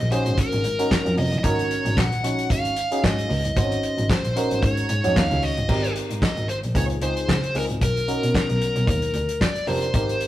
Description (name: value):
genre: early-eighties boogie funk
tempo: 113 BPM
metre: 4/4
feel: swing 56% on 16ths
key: Ab mixolydian, Ab major from 5.7 s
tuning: A4 = 440 Hz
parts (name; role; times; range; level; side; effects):
- nasal lead guitar with a parked wah; melody; 0.0-10.3 s; Bb4 to Gb5; -26 LUFS; left 1 dB; overdrive
- warm double bass; bass; 0.0-10.1 s; F1 to Db3; -25 LUFS; equal; none
- damped 70s drum kit; drums; 0.0-10.3 s; crash cymbal, handclaps, hi-hat, kick drum, snare drum; -24 LUFS; equal; none
- FM electric piano; accompaniment; 0.1-10.3 s; C4 to Db5; -27 LUFS; right 1 dB; chorus
room: moderate stone room reverb, RT60 1.2 s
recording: rough rehearsal-room recording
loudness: -20 LUFS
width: side -14 dB against mid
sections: 0.0-5.7 A section; 5.7-10.3 B section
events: none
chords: 0.0 Ab9sus4; 5.7 Abmaj9; 6.8 Dbmaj9; 7.8 Bmaj9; 8.9 Ebmaj9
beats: 0.38 0.91 | 1.44 1.97 2.50 3.03 | 3.56 4.10 4.63 5.16 | 5.69 6.22 6.75 7.28 | 7.81 8.34 8.88 9.41 | 9.94